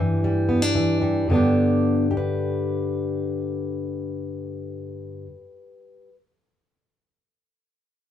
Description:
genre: folk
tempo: 108 BPM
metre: 4/4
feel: straight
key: G major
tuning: A4 = 440 Hz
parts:
  - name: fingerpicked plugged-in steel-string acoustic guitar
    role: accompaniment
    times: 0.0-6.2 s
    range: G2 to B4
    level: -21 LUFS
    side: left 1 dB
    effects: none
room: wet studio reverb, RT60 0.6 s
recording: band playing live in one room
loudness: -20 LUFS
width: side -10 dB against mid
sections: 0.0-1.3 A section; 1.3-5.7 B section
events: slowing down 0.0-1.3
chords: 0.0 Em7/G; 1.3 G

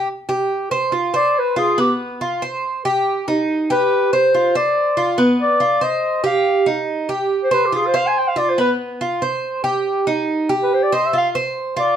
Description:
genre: latin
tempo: 141 BPM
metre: 4/4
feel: straight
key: C minor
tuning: A4 = 440 Hz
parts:
  - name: Cuban tres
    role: arpeggios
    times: 0.0-12.0 s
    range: B3 to C5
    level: -18 LUFS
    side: right 2 dB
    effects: none
  - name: warm clarinet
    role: melody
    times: 1.2-12.0 s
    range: G4 to Ab5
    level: -17 LUFS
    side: left 1 dB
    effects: none
room: moderate studio reverb, RT60 0.9 s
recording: dark, warm production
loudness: -16 LUFS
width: side -9 dB against mid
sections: 0.1-12.0 A section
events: clarinet solo 0.1-12.0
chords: 0.1 C5; 0.9 Fm6; 1.8 Gadd11/B (rootless); 2.6 Cm; 4.3 Dm7/F; 5.2 Bdim; 6.0 Cm; 7.7 Fm; 8.6 F5; 9.4 Cm; 11.1 F5

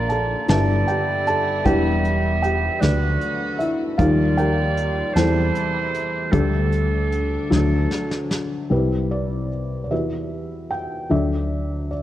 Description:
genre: acoustic folk-pop ballad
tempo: 51 BPM (dotted quarters)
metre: 6/8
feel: straight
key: unclear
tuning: A4 = 435 Hz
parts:
  - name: felt-muted upright piano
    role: melody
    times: 0.0-12.0 s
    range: G1 to Bb5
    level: -22 LUFS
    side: left 1 dB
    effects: none
  - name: bright clarinet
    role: second line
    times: 0.0-8.3 s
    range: A4 to E5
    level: -26 LUFS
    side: right 4 dB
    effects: none
  - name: rich chamber string section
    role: sustained chords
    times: 0.0-8.7 s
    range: C3 to F#4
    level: -32 LUFS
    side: left 2 dB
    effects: none
  - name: woody fretless electric bass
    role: bass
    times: 0.0-12.0 s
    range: E1 to E2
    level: -23 LUFS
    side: equal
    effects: none
  - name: soft brush drum kit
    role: drums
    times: 0.1-8.5 s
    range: hi-hat, kick drum, snare drum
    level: -27 LUFS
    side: equal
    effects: none
room: moderate concert hall reverb, RT60 2.1 s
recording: worn, warbling old tape, cassette tape, warbly pitch drift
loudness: -19 LUFS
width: side -13 dB against mid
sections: 0.0-8.7 A section; 8.7-12.0 B section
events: drum fill 7.5-8.7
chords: 0.5 G6; 1.7 Em7; 2.8 Bm7/D; 4.0 Ebadd9; 5.2 C6/E; 6.3 Dsus4; 7.5 D; 8.7 Cmaj7; 9.9 Emadd9; 11.1 D

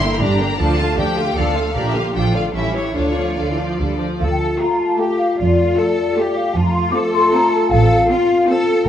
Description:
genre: quick classical-period movement for symphony orchestra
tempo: 154 BPM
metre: 3/4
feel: rubato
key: D minor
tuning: A4 = 440 Hz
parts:
  - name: rich studio violin section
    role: melody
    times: 0.0-8.8 s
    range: A4 to C6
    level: -27 LUFS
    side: left 3 dB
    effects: none
  - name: rich studio violin section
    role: second line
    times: 0.0-8.8 s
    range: D4 to G5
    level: -27 LUFS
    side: left 3 dB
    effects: none
  - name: rich studio viola section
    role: accompaniment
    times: 0.0-8.8 s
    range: D3 to E4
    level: -24 LUFS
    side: right 2 dB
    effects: none
  - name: rich studio double bass section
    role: bass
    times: 0.0-8.0 s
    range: G1 to F2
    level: -20 LUFS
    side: right 2 dB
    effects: none
  - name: rich symphonic cello section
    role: bass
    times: 0.0-8.9 s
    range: D4 to A4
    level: -22 LUFS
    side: equal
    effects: none
  - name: mellow hollow large flute ensemble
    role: second line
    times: 4.2-8.9 s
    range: D5 to D6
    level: -19 LUFS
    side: left 2 dB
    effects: none
  - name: mellow French horn section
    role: sustained chords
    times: 4.2-8.9 s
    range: A3 to F4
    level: -19 LUFS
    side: left 2 dB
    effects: none
room: wet recital hall reverb, RT60 1.5 s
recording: dark, warm production, nothing above 10.3 kHz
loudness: -15 LUFS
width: side -10 dB against mid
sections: 0.0-4.2 A section; 4.2-8.9 B section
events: none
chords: 0.0 Gm; 0.6 Dm; 1.8 Bb; 2.2 Dm/A; 2.6 A7; 3.0 Dm; 5.4 Dm/F; 6.6 F; 7.7 F/A

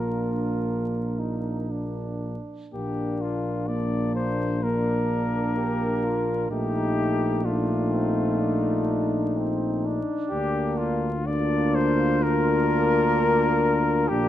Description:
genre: classical, hymn-like piece for brass band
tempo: 63 BPM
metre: 4/4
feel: rubato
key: Bb major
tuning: A4 = 440 Hz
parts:
  - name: mellow cornet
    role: melody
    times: 0.0-14.3 s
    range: F4 to D5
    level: -28 LUFS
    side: left 4 dB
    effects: none
  - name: mellow flugelhorn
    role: second line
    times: 0.0-14.3 s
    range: C4 to G4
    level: -32 LUFS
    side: right 4 dB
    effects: none
  - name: clear trombone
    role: accompaniment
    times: 0.0-14.3 s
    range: A3 to Bb3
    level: -30 LUFS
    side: right 3 dB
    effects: none
  - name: warm trombone section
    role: accompaniment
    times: 0.0-14.3 s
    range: D4 to Eb4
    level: -30 LUFS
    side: left 2 dB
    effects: none
  - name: mellow tuba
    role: bass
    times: 0.0-14.3 s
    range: Bb1 to D2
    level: -27 LUFS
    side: equal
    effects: none
room: moderate scoring stage reverb, RT60 1.8 s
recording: dark, warm production, vinyl crackle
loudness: -22 LUFS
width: side -12 dB against mid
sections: 0.0-2.7 A section; 2.7-14.3 B section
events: none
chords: 0.0 Bb; 6.5 F7/Bb; 10.3 Bb/D

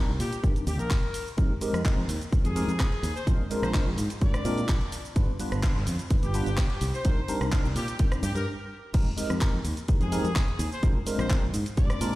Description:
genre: filtered disco house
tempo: 127 BPM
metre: 4/4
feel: straight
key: F dorian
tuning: A4 = 440 Hz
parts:
  - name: tine electric piano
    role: accompaniment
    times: 0.0-12.2 s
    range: G3 to B4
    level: -33 LUFS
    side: equal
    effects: fast stereo tremolo, phaser, vintage 12-bit sampler grit, sidechain pumping, low-pass filter
  - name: modern bright fingered electric bass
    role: bass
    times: 0.1-12.2 s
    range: G1 to Bb2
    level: -29 LUFS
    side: equal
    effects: sidechain pumping, low-pass filter
  - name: clear horn section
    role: melody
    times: 0.2-12.2 s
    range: G4 to D5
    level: -36 LUFS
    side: left 2 dB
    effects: sidechain pumping, low-pass filter, tape echo
  - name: house drum kit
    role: drums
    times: 0.2-12.1 s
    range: crash cymbal, handclaps, hi-hat, rim click, shaker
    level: -36 LUFS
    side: equal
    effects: sidechain pumping on hats, high-pass filter on hats, sidechain pumping on perc, high-pass filter on perc, high-pass filter on snare, sidechain pumping on cymbals, high-pass filter on cymbals, high-pass filter on room
  - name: electronic kick drum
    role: drums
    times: 0.4-11.9 s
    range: none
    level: -24 LUFS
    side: equal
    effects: none
room: light reverb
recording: played on a big sound system in a bare room, large studio reverb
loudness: -24 LUFS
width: side -18 dB against mid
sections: 0.0-8.9 A section; 8.9-12.2 B section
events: build-up 0.0-8.9; filter sweep 0.0-8.9; break 8.5-8.9; drop 8.9-12.2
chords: 0.0 Cm7; 1.4 Fm11; 3.3 Bb7; 4.9 G7; 6.8 Cm7; 8.9 Fm11; 10.8 Bb7

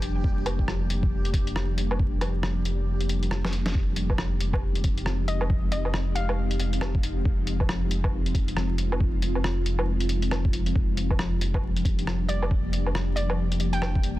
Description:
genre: future garage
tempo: 137 BPM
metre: 4/4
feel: swing 60% on 16ths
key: F dorian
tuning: A4 = 440 Hz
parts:
  - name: hollow square pluck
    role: melody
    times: 0.0-0.3, 5.3-6.8, 12.3-14.2 s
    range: D5 to G5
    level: -36 LUFS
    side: left 1 dB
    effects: chorus, tape echo
  - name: ethereal airy pad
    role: sustained chords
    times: 0.0-14.2 s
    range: F3 to G4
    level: -32 LUFS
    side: left 1 dB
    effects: ensemble chorus, built-in reverb, sidechain pumping
  - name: warm sub bass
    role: bass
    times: 0.0-14.2 s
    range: F1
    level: -27 LUFS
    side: equal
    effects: tube saturation, sidechain pumping
  - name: lo-fi sampler-style drum kit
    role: drums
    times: 0.0-14.1 s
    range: hi-hat, rim click, snare drum, woodblock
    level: -32 LUFS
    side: equal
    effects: small room ambience, soft clipping on snare
  - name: backwards swelling texture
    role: texture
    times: 0.0-3.8 s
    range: G4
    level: -45 LUFS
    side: right 1 dB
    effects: built-in reverb
  - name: electronic kick drum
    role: drums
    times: 0.2-14.0 s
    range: none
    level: -26 LUFS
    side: equal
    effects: small room ambience
room: little or no reverb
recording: dense, heavily limited modern master, vinyl crackle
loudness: -23 LUFS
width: side -16 dB against mid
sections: 0.0-3.7 A section; 3.7-14.2 B section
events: kick drops out 2.9-3.7; drum fill 3.4-3.7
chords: 0.0 Gm7/F; 3.7 Fm9; 10.8 Gm7/F

